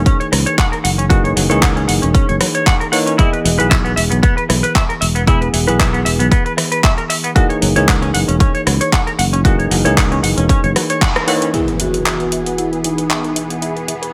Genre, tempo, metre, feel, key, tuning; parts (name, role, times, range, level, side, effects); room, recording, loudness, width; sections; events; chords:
nu-disco, nu disco; 115 BPM; 4/4; swing 55% on 16ths; E lydian; A4 = 435 Hz
bell-like tine electric piano; accompaniment; 0.0-14.1 s; E3 to D#5; -22 LUFS; equal; sidechain pumping, tape echo
fingered electric bass; bass; 0.0-10.7 s; E1 to C#2; -20 LUFS; equal
direct-recorded clean electric guitar; riff; 0.1-14.1 s; E3 to F#5; -22 LUFS; equal; lush chorus, low-pass filter, tape echo
electronic kick drum; drums; 0.1-11.1 s; -16 LUFS; equal
house drum kit; drums; 0.1-14.1 s; handclaps, hi-hat, rim click; -21 LUFS; equal
vibraphone with medium mallets; melody; 11.5-13.3 s; D#4 to F#4; -24 LUFS; equal; delay
lush unison pad; sustained chords; 11.8-14.1 s; E3 to G#4; -28 LUFS; equal; chorus, phaser, sidechain pumping
impact; sound effects; 11.5-13.6 s; -30 LUFS; equal
light reverb; -15 LUFS; mono
0.0-11.5 A section; 11.5-14.1 B section
band accent 11.0; impact 11.5-13.6
0.0 F#13; 3.2 E; 7.4 F#13; 11.5 E